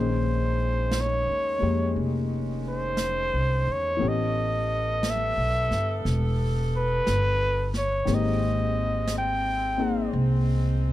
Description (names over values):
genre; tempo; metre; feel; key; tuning
jazz ballad; 59 BPM; 4/4; swing 66% on 8ths; unclear; A4 = 439 Hz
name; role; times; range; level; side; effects
breathy trumpet; melody; 0.0-10.1 s; B4 to G5; -27 LUFS; equal; none
warm baby grand piano; accompaniment; 0.0-10.9 s; Eb3 to Ab4; -30 LUFS; left 5 dB; none
mellow saxophone section; sustained chords; 0.0-10.9 s; D#3 to A4; -36 LUFS; equal; none
upright bass; bass; 0.0-10.9 s; E1 to F2; -26 LUFS; equal; none
jazz brush drum kit; drums; 0.9-10.9 s; brushed snare drum, hi-hat, snare drum; -36 LUFS; right 1 dB; none
room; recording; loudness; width
little or no reverb; dark, warm production; -23 LUFS; side -14 dB against mid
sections
0.0-10.9 A section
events
trumpet solo 0.0-10.9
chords
0.0 Bbm11; 4.0 A9; 8.1 Abmaj9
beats
0.92 1.95 2.98 | 4.00 5.02 6.04 7.06 | 8.07 9.09 10.12